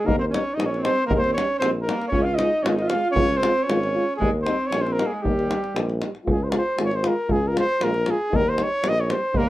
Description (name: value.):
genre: balkan folk, Balkan brass band.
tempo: 116 BPM.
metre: 2/4.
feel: straight.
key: Eb mixolydian.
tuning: A4 = 441 Hz.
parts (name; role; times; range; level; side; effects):
mellow trumpet; melody; 0.0-9.5 s; G4 to F5; -24 LUFS; equal; none.
warm alto saxophone; second line; 0.0-6.0, 9.4-9.5 s; G3 to F4; -28 LUFS; right 2 dB; none.
warm tuba; bass; 0.0-9.5 s; Ab1 to Eb2; -26 LUFS; equal; none.
warm euphonium; accompaniment; 0.1-9.4 s; Eb4 to F4; -28 LUFS; left 2 dB; none.
warm euphonium; accompaniment; 0.1-9.5 s; G3 to Ab3; -33 LUFS; right 4 dB; none.
davul; percussion; 0.1-9.5 s; none; -27 LUFS; equal; none.
room: wet studio reverb, RT60 0.5 s.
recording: rough home demo mix.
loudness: -20 LUFS.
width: side -15 dB against mid.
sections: 0.0-6.3 A section; 6.3-9.5 A section.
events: none.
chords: 0.1 Eb; 2.1 Db; 4.2 Eb; 6.3 Db; 8.3 Eb.